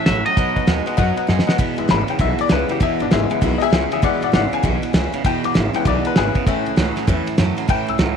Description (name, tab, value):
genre	rockabilly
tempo	197 BPM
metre	4/4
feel	swing 64% on 8ths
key	E major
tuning	A4 = 438 Hz
part	twangy electric guitar	melody	0.0-1.2 s	D#5 to E5	-22 LUFS	left 1 dB	wide subtle chorus, tape echo
part	bright upright piano	accompaniment	0.0-8.2 s	G#3 to E6	-22 LUFS	left 13 dB	none
part	picked steel-string acoustic guitar	accompaniment	0.0-8.2 s	E2 to F#4	-27 LUFS	left 12 dB	none
part	twangy electric guitar	riff	0.0-8.2 s	E2 to G#3	-23 LUFS	right 15 dB	spring reverb
part	upright bass	bass	0.1-8.1 s	E1 to F#2	-23 LUFS	right 1 dB	none
part	cloth-damped thuddy drum kit	drums	0.1-8.1 s	kick drum, ride cymbal, snare drum	-19 LUFS	right 1 dB	none
room	light reverb, small room ambience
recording	1960s-style stereo with parts hard left and right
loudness	-16 LUFS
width	side -7 dB against mid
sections	0.0-1.6 A section; 1.6-8.2 B section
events	drum fill 1.3-1.6; upright piano solo 1.6-8.2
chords	0.4 B; 1.6 E; 6.5 A